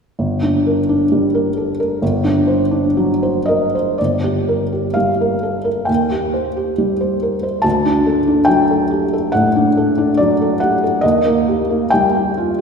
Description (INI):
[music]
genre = classical, romantic nocturne for solo piano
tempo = 55-72 BPM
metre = 4/4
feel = rubato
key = G minor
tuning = A4 = 439 Hz
[part]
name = felt-muted upright piano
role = solo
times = 0.2-12.6 s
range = G1 to A5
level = -14 LUFS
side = equal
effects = none
[sound]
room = wet concert hall reverb, RT60 2.0 s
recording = recorded in a church or concert hall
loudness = -14 LUFS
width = side -6 dB against mid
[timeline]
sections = 0.2-4.0 A section; 4.0-12.6 B section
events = none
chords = 0.2 Gm; 2.0 D7/G; 4.0 Gm; 5.9 Cm/Eb; 7.6 D; 11.0 Eb